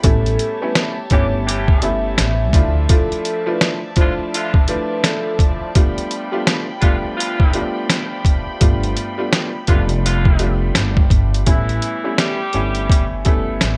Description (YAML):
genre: hip hop, boom-bap hip-hop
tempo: 84 BPM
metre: 4/4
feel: swing 60% on 16ths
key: unclear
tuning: A4 = 440 Hz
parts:
  - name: vibraphone with soft mallets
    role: melody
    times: 0.0-5.4 s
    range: A4 to E5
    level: -26 LUFS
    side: equal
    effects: high-pass filter, low-pass filter
  - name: clear upright piano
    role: accompaniment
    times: 0.0-13.8 s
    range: F3 to F4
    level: -26 LUFS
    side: equal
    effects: cassette tape, high-pass filter, low-pass filter
  - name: warm studio string section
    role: sustained chords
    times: 0.0-11.4 s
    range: F3 to B5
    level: -33 LUFS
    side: equal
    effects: high-pass filter, low-pass filter
  - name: upright bass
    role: bass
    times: 0.0-2.8, 8.6-13.8 s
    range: F1 to D2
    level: -22 LUFS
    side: equal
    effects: none
  - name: trip hop sampler-style drum kit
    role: drums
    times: 0.0-13.8 s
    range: hi-hat, kick drum, snare drum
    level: -18 LUFS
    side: equal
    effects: none
  - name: clear saxophone section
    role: stabs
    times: 1.1-13.5 s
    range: D3 to A4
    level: -27 LUFS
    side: equal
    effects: high-pass filter, low-pass filter, slapback echo
room: little or no reverb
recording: none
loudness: -17 LUFS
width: mono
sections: 0.0-11.5 A section; 11.5-13.8 B section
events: none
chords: 0.0 A7; 2.5 Dmadd9; 5.8 G7; 11.5 A7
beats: | 0.04 0.75 1.47 2.18 | 2.90 3.61 4.33 5.04 | 5.75 6.47 7.18 7.90 | 8.61 9.32 10.04 10.75 | 11.47 12.18 12.90 13.61